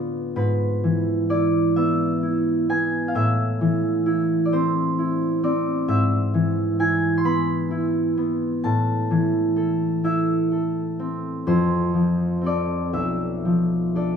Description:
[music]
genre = classical, solo harp piece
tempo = 43 BPM (dotted quarters)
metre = 6/8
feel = rubato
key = A minor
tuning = A4 = 440 Hz
[part]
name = concert harp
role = solo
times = 0.0-14.2 s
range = B1 to C6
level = -20 LUFS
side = equal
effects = none
[sound]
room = light reverb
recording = close, detailed microphones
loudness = -20 LUFS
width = side -7 dB against mid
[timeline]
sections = 0.0-14.2 A section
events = none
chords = 0.4 E/G#; 3.1 Am; 5.9 E/G#; 8.7 Am; 11.5 F; 12.9 Bm7b5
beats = | 0.37 1.77 | 3.15 4.51 | 5.89 7.25 | 8.66 10.05 | 11.47 12.94

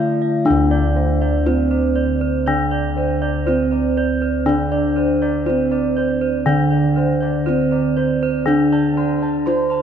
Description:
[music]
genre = gamelan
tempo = 60 BPM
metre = 4/4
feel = straight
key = unclear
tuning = A4 = 440 Hz
[part]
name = gamelan-type bronze metallophone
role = melody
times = 0.0-9.8 s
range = C4-25c to C5-25c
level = -20 LUFS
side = right 2 dB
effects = none
[part]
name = gamelan-type bronze metallophone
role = accompaniment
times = 0.0-9.8 s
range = D3 to A3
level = -24 LUFS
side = left 2 dB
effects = none
[part]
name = gamelan-type bossed gongs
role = arpeggios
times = 0.0-9.8 s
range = C5-25c to C6-25c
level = -25 LUFS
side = left 1 dB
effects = none
[part]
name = gamelan-type bronze metallophone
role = arpeggios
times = 0.0-9.8 s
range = C5-25c to C6-25c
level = -25 LUFS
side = right 5 dB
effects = none
[part]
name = gamelan-type bossed gongs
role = bass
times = 0.0-9.8 s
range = D2 to F4-45c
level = -21 LUFS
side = equal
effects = none
[sound]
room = wet church reverb, RT60 4.1 s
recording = recorded in a church or concert hall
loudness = -16 LUFS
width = side -8 dB against mid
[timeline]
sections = 0.5-9.8 A section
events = none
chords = none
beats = | 0.46 1.46 2.46 3.47 | 4.47 5.47 6.47 7.48 | 8.48 9.47

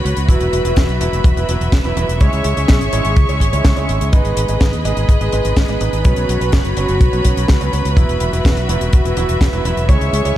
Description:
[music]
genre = italo disco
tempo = 125 BPM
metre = 4/4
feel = straight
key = unclear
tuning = A4 = 440 Hz
[part]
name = clear studio string section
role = sustained chords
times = 0.0-10.4 s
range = F#4 to C#6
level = -21 LUFS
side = equal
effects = none
[part]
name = fingered electric bass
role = bass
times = 0.0-10.3 s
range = E1 to D#2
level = -18 LUFS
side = equal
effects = none
[part]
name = tight funk drum kit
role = drums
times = 0.1-10.3 s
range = hi-hat, snare drum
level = -24 LUFS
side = left 1 dB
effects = none
[part]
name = clear baby grand piano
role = stabs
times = 0.3-10.4 s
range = F#3 to C#5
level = -22 LUFS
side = right 3 dB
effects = ping-pong delay
[part]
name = kick drum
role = drums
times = 0.3-10.0 s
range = none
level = -13 LUFS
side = equal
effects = none
[sound]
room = light reverb, small room ambience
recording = dark, warm production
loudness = -13 LUFS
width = side -13 dB against mid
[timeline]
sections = 0.0-10.4 A section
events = none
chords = 0.3 Esus2; 2.2 C#m; 4.1 G#m; 6.0 Bsus2; 8.0 Esus2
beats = | 0.29 0.77 1.25 1.73 | 2.21 2.69 3.17 3.65 | 4.13 4.61 5.09 5.57 | 6.05 6.53 7.01 7.49 | 7.97 8.45 8.93 9.41 | 9.89 10.37

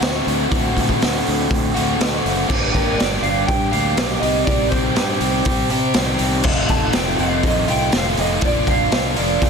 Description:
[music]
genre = indie rock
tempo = 121 BPM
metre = 4/4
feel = straight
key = G minor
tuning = A4 = 438 Hz
[part]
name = overdriven electric guitar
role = riff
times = 0.0-9.5 s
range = F2 to G4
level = -20 LUFS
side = left 1 dB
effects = none
[part]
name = growling fingered electric bass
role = bass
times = 0.0-9.5 s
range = F1 to C3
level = -24 LUFS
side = equal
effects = overdrive
[part]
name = raw garage drum kit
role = drums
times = 0.0-9.5 s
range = crash cymbal, hi-hat, kick drum, snare drum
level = -20 LUFS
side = equal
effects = none
[part]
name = electric guitar through a small old amp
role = melody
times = 2.7-9.5 s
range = Bb4 to A5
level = -23 LUFS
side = right 3 dB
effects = lush chorus
[sound]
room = small room ambience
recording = dense, heavily limited modern master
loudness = -16 LUFS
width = side -6 dB against mid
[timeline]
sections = 0.0-2.5 A section; 2.5-9.5 B section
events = none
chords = 0.0 D5; 2.5 Gm7; 4.2 Cm; 6.5 F7; 8.4 Bb/F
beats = 0.03 | 0.52 1.02 1.51 2.01 | 2.50 3.00 3.49 3.98 | 4.48 4.97 5.47 5.96 | 6.45 6.95 7.44 7.93 | 8.43 8.92 9.41

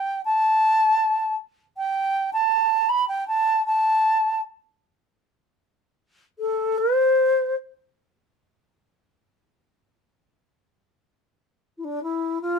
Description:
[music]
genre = andean folk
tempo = 78 BPM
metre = 2/4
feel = straight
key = A minor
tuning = A4 = 440 Hz
[part]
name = reedy alto flute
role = solo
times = 0.0-7.6, 11.8-12.6 s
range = D4 to B5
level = -19 LUFS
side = equal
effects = none
[sound]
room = light reverb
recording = none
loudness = -20 LUFS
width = side -6 dB against mid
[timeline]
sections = 0.0-4.8 A section; 4.8-11.0 B section; 11.0-12.6 C section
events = none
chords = none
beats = | 0.23 1.00 | 1.76 2.53 | 3.30 4.07 | 4.84 5.61 | 6.39 7.16 | 7.94 8.71 | 9.49 10.27 | 11.04 11.82

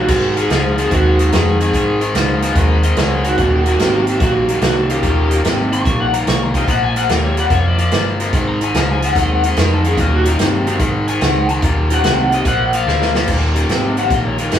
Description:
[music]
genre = electric blues shuffle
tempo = 146 BPM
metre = 4/4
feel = swing 67% on 8ths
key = unclear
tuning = A4 = 439 Hz
[part]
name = lead guitar through a small cranked amp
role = melody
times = 0.0-14.6 s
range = Eb4 to Db6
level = -19 LUFS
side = equal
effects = overdrive
[part]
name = overdriven semi-hollow guitar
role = riff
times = 0.0-14.6 s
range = Eb2 to G3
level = -18 LUFS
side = left 2 dB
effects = none
[part]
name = vintage muted fingered electric bass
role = bass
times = 0.0-14.6 s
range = Eb1 to F2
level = -19 LUFS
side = equal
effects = none
[part]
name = natural country drum kit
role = drums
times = 0.1-14.6 s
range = crash cymbal, hi-hat, kick drum, snare drum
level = -19 LUFS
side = right 1 dB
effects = none
[part]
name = bright tonewheel organ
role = accompaniment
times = 0.8-14.6 s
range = F3 to F5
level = -25 LUFS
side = right 2 dB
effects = slow rotary speaker, overdrive
[sound]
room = moderate small room reverb, RT60 0.5 s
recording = band playing live in one room, small room ambience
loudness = -13 LUFS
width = side -10 dB against mid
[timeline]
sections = 0.0-13.3 A section; 13.3-14.6 B section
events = lead electric guitar solo 0.0-13.3; drum fill 12.9-13.3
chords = 0.1 Ab9; 1.7 Abm7; 3.4 Eb9; 6.7 Bb9; 8.3 Absus2; 10.0 Eb9; 10.8 Ab5; 11.6 Eb9; 12.5 Bb9; 13.3 Eb9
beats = | 0.09 0.50 0.91 1.32 | 1.74 2.15 2.56 2.97 | 3.38 3.80 4.21 4.62 | 5.03 5.45 5.86 6.27 | 6.68 7.09 7.51 7.92 | 8.33 8.74 9.16 9.57 | 9.98 10.39 10.81 11.22 | 11.63 12.04 12.46 12.87 | 13.28 13.69 14.11 14.52

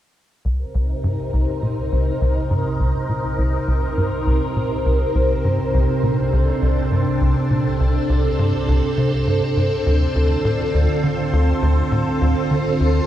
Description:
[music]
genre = ambient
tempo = 102 BPM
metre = 4/4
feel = straight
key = C dorian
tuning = A4 = 442 Hz
[part]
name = phased string machine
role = sustained chords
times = 0.5-13.1 s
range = C3 to C5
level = -20 LUFS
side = right 1 dB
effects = ensemble chorus, phaser
[part]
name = tight sequencer bass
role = riff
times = 0.5-13.0 s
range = C2 to D3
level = -19 LUFS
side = equal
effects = lush chorus, tape echo
[sound]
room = wet cathedral reverb, RT60 6.2 s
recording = in a vast, echoing space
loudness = -17 LUFS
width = side -12 dB against mid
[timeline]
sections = 0.4-13.1 A section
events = filter sweep on analog synth bass 0.4-13.1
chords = 0.4 Cm7; 9.9 Dm7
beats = | 0.45 1.04 1.62 2.21 | 2.80 3.39 3.98 4.57 | 5.15 5.74 6.33 6.92 | 7.51 8.10 8.68 9.27 | 9.86 10.45 11.04 11.62 | 12.21 12.80

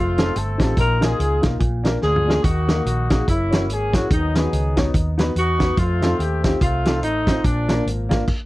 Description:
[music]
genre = uptempo gospel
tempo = 144 BPM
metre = 4/4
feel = swing 59% on 8ths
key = unclear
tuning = A4 = 441 Hz
[part]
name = mellow horn section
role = melody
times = 0.0-8.2 s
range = F3 to Bb4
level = -23 LUFS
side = left 1 dB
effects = none
[part]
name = hollow-body short-scale fingered electric bass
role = bass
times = 0.0-8.2 s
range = F1 to F2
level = -22 LUFS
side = equal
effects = none
[part]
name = warm upright piano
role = accompaniment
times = 0.2-8.2 s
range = Bb2 to Db5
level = -25 LUFS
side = left 1 dB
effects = none
[part]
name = warm soul drum kit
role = drums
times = 0.2-8.4 s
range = crash cymbal, hi-hat, kick drum, snare drum, toms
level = -21 LUFS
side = equal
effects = none
[sound]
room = little or no reverb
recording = dry, close 1970s-style studio recording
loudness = -17 LUFS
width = side -18 dB against mid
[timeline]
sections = 0.0-8.5 A section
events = drum fill 2.0-2.4; stop 8.3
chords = 0.0 F7; 0.8 Bbsus4; 1.6 Bb; 2.4 Ebm; 3.3 Gb7; 4.1 B; 5.8 F7; 7.4 Bb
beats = 0.35 | 0.77 1.19 1.60 2.02 | 2.44 2.86 3.27 3.69 | 4.11 4.53 4.94 5.36 | 5.78 6.20 6.61 7.03 | 7.45 7.86 8.28

